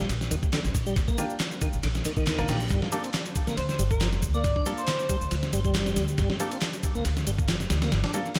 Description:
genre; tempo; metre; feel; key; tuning
breakbeat, breaks; 138 BPM; 4/4; swing 54% on 16ths; G minor; A4 = 440 Hz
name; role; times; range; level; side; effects
tonewheel organ; riff; 0.0-8.2 s; D3 to G4; -35 LUFS; equal; chorus vibrato, slow rotary speaker, overdrive, analog delay
upright bass; bass; 0.0-8.0 s; F1 to Eb2; -31 LUFS; equal; tube saturation
electronic shaker and handclaps; drums; 0.0-8.4 s; none; -39 LUFS; equal; analog delay
dusty soul sampler-style drum kit; drums; 0.1-8.4 s; kick drum, ride cymbal, snare drum; -31 LUFS; equal; analog delay
bright baby grand piano; stabs; 1.2-8.3 s; Bb3 to Bb4; -38 LUFS; equal; analog delay
reverse cymbal; sound effects; 2.1-2.7 s; none; -45 LUFS; equal; none
airy dreamy lead; melody; 3.6-5.4 s; Bb4 to D5; -35 LUFS; equal; chorus, telephone sound, analog delay
room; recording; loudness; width
digital ambience; echo-heavy mix; -27 LUFS; mono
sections
0.0-8.4 A section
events
reverse cymbal 2.1-2.7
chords
0.0 Ebmaj7; 2.7 Gm7

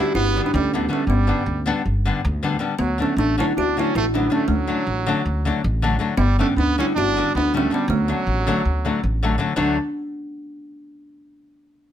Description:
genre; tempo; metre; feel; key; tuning
balkan folk; 318 BPM (eighths); 9/8; straight; D major; A4 = 440 Hz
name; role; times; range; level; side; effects
kalimba; melody; 0.0-9.8 s; A3 to G4; -23 LUFS; equal; none
bright trumpet; second line; 0.0-9.8 s; F#3 to E4; -26 LUFS; right 5 dB; none
nylon-string guitar; accompaniment; 0.0-9.8 s; D3 to D4; -24 LUFS; left 4 dB; none
upright bass; bass; 0.1-9.8 s; G1 to D2; -23 LUFS; equal; none
room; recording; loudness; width
light reverb; none; -18 LUFS; side -10 dB against mid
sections
0.0-9.6 A section; 9.6-11.3 B section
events
none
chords
0.0 G; 2.8 D; 6.2 G; 7.9 D

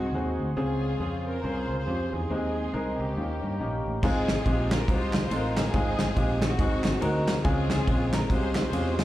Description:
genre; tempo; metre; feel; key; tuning
uptempo gospel; 140 BPM; 4/4; swing 60% on 8ths; Ab major; A4 = 441 Hz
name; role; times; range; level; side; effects
warm alto saxophone; melody; 0.0-3.9 s; Gb4 to C5; -38 LUFS; right 2 dB; slapback echo
warm studio string section; melody; 0.0-9.0 s; Bb3 to C5; -34 LUFS; left 2 dB; slapback echo
warm grand piano; accompaniment; 0.0-9.0 s; Ab2 to Bb4; -29 LUFS; equal; slapback echo
chorused pulse-width pad; sustained chords; 0.0-4.0 s; C5 to C6; -41 LUFS; right 1 dB; none
fingered electric bass; bass; 0.0-9.0 s; Ab1 to G2; -30 LUFS; equal; none
natural country drum kit; drums; 4.0-9.0 s; crash cymbal, kick drum, ride cymbal, snare drum; -27 LUFS; equal; none
group handclap; percussion; 4.3-9.0 s; none; -40 LUFS; right 3 dB; none
room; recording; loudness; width
small room ambience; live gig heard through the venue's PA, club reverb; -24 LUFS; side -14 dB against mid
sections
0.0-4.0 A section; 4.0-9.0 B section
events
none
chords
0.0 Ab7; 0.6 Dbmaj7; 2.3 Ab/Eb; 3.2 Eb7; 4.0 Ab6; 5.7 Fm7/Ab; 6.6 Ab7; 7.4 Dbmaj7

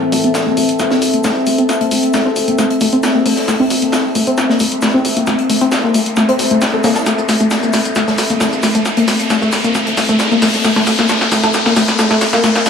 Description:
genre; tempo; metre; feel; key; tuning
driving peak-time techno; 134 BPM; 4/4; straight; A phrygian; A4 = 440 Hz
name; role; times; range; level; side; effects
riser; sound effects; 1.6-12.7 s; none; -22 LUFS; left 1 dB; none
warbly tape-like pad; texture; 0.0-12.7 s; C4 to E5; -18 LUFS; left 1 dB; chorus, built-in reverb
warbly dusty pluck; riff; 0.1-12.7 s; A3 to A4; -15 LUFS; left 1 dB; chorus, tape echo
tight sequencer bass; bass; 0.1-12.7 s; A1 to A2; -27 LUFS; equal; none
big rock drum kit; drums; 0.1-12.7 s; hi-hat, shaker, snare drum; -25 LUFS; left 2 dB; high-pass filter on hats, high-pass filter on snare, high-pass filter on perc, high-pass filter on room
punchy analog drum machine; drums; 0.1-12.7 s; hi-hat, shaker, snare drum, toms; -18 LUFS; left 1 dB; high-pass filter on cymbals, high-pass filter on snare, high-pass filter on hats, high-pass filter on perc, high-pass filter on toms
room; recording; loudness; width
wet plate reverb, RT60 2.1 s; small room ambience; -11 LUFS; side -7 dB against mid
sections
0.0-12.7 A section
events
build-up 0.0-12.7; drum fill 0.0-12.7; filter sweep on synth arpeggio sound 0.0-12.7; riser 1.6-12.7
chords
0.0 Am

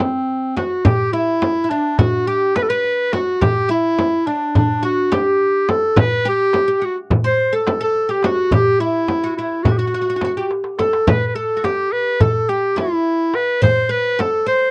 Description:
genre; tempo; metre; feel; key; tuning
Turkish makam ensemble; 211 BPM (eighths); 9/8; straight; G makam rast; A4 = 440 Hz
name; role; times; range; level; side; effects
clear clarinet; melody; 0.0-14.7 s; C4 to C5; -20 LUFS; equal; none
oud; second line; 0.0-14.7 s; C4 to C5; -27 LUFS; equal; none
darbuka; percussion; 0.0-14.6 s; none; -24 LUFS; equal; none
frame drum; percussion; 0.0-14.3 s; none; -22 LUFS; equal; none
room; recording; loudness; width
light reverb; cassette tape; -18 LUFS; mono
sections
0.9-14.7 A section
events
drum fill 10.5-11.1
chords
none

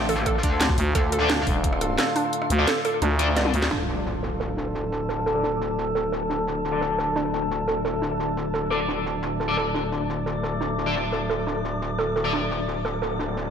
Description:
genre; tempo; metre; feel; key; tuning
dark technical drum and bass; 174 BPM; 4/4; straight; D minor; A4 = 442 Hz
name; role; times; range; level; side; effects
metallic inharmonic drone; sustained chords; 0.0-13.5 s; A2 to D5; -27 LUFS; left 1 dB; chorus, built-in reverb, sidechain pumping
metallic wobble bass; bass; 0.0-1.5, 3.7-13.5 s; D1 to D2; -30 LUFS; equal; chorus, tube saturation
warbly dusty pluck; arpeggios; 0.1-13.3 s; D4 to D5; -29 LUFS; right 2 dB; chorus, sidechain pumping, ping-pong delay
drum and bass drum kit; drums; 0.1-3.7 s; hi-hat, rim click, snare drum, toms; -27 LUFS; left 1 dB; none
electronic kick drum; drums; 0.3-1.7 s; none; -25 LUFS; equal; none
growling FM bass; bass; 0.8-3.7 s; Eb1 to D2; -23 LUFS; equal; none
distorted electric guitar; stabs; 1.2-12.3 s; D4 to D5; -30 LUFS; left 2 dB; distortion, vintage 12-bit sampler grit, low-pass filter, ping-pong delay
impact and riser; sound effects; 3.7-5.1, 12.9-13.5 s; none; -35 LUFS; equal; none
room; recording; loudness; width
wet lush hall reverb, RT60 1.8 s; dreamy mix soaked in reverb; -22 LUFS; side -7 dB against mid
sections
0.0-3.7 A section; 3.7-13.5 B section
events
drop 0.0-3.7; kick drops out 3.0-3.7; drum fill 3.4-3.7; band accent 3.6; impact 3.7-5.1; filter sweep on distorted electric guitar 3.7-13.5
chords
0.0 D5

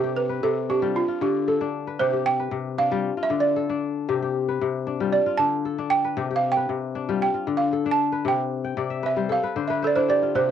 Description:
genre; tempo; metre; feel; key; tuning
west african traditional; 115 BPM; 4/4; straight; C major; A4 = 438 Hz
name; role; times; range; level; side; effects
balafon; melody; 0.0-10.5 s; F4 to A5; -23 LUFS; right 5 dB; cassette tape
kora; arpeggios; 0.0-10.5 s; C3 to G5; -25 LUFS; left 8 dB; cassette tape
room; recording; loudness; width
light reverb; home recording on cassette; -21 LUFS; side -9 dB against mid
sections
0.0-10.4 A section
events
balafon solo 0.0-10.4; kora fill 8.7-10.4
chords
0.0 C5; 1.0 Dm; 2.0 C5; 3.0 Dm; 4.1 C5; 5.1 Dm; 6.2 C5; 7.2 Dm; 8.3 C5; 9.3 N.C.

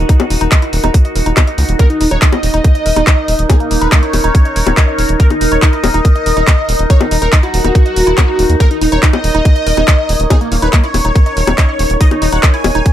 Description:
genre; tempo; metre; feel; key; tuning
psychedelic trance; 141 BPM; 4/4; straight; Eb minor; A4 = 440 Hz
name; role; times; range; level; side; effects
overtone-sweeping drone; sustained chords; 0.0-12.9 s; Eb4 to Db5; -22 LUFS; equal; chorus, built-in reverb, sidechain pumping
round analog bass; bass; 0.0-12.8 s; Eb1 to Eb2; -15 LUFS; equal; none
deep dark ambient pad; texture; 0.0-12.9 s; Eb4 to Bb5; -22 LUFS; equal; chorus, built-in reverb, sidechain pumping
woody wave-folded pluck; riff; 0.1-12.8 s; Eb4 to Eb5; -22 LUFS; moving between left 5 dB and right 7 dB; chorus, auto-pan, sidechain pumping, ping-pong delay
big-room dance drum kit; drums; 0.1-12.9 s; bongos, handclaps, hi-hat; -17 LUFS; left 2 dB; overdrive
electronic kick drum; drums; 0.1-12.9 s; none; -9 LUFS; equal; none
wide unison lead; melody; 1.8-12.9 s; Bb3 to Ab5; -17 LUFS; equal; phaser, sidechain pumping, ping-pong delay
room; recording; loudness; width
little or no reverb; none; -9 LUFS; side -11 dB against mid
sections
0.0-12.9 A section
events
none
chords
0.0 Eb5

